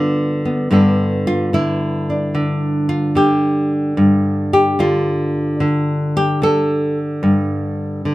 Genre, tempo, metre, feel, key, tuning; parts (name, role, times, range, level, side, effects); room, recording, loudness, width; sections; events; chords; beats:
solo jazz; 73 BPM; 4/4; swing 68% on 8ths; G mixolydian; A4 = 442 Hz
nylon-string guitar; solo; 0.0-8.1 s; G2 to A4; -15 LUFS; equal
moderate club reverb, RT60 0.5 s; -15 LUFS; side -16 dB against mid
0.7-8.1 A section
nylon-string guitar solo 0.7-8.1
0.0 G7; 0.7 G9
| 0.70 1.52 2.33 3.15 | 3.97 4.79 5.60 6.42 | 7.24 8.05